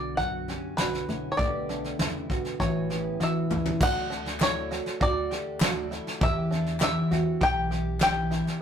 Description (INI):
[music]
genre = indie folk with a building arrangement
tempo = 100 BPM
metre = 4/4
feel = straight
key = D major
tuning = A4 = 439 Hz
[part]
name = bluegrass banjo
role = melody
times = 0.0-8.6 s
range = B4 to G5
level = -29 LUFS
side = left 1 dB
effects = none
[part]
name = fingerpicked steel-string acoustic guitar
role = accompaniment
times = 0.0-3.8 s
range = F#2 to G4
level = -31 LUFS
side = left 1 dB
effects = none
[part]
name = open-back banjo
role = arpeggios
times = 0.0-8.6 s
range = D4 to G4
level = -35 LUFS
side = right 6 dB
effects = none
[part]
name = upright bass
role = bass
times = 0.0-8.4 s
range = A1 to E2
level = -36 LUFS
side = equal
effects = none
[part]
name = soft brush drum kit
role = drums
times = 0.2-8.5 s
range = crash cymbal, kick drum, snare drum, toms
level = -29 LUFS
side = equal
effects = none
[part]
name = picked twelve-string acoustic guitar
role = accompaniment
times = 3.8-8.6 s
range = D3 to G4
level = -30 LUFS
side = left 1 dB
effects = none
[part]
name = group handclap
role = percussion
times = 4.4-8.1 s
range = none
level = -38 LUFS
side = left 3 dB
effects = none
[sound]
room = wet studio reverb, RT60 0.6 s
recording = rough rehearsal-room recording, tube saturation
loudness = -24 LUFS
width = side -8 dB against mid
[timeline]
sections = 0.0-3.8 A section; 3.8-8.6 B section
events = drum fill 3.2-3.8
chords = 0.0 Bmadd9; 1.4 Gadd9/B; 2.6 Aadd9; 3.8 D; 6.2 Em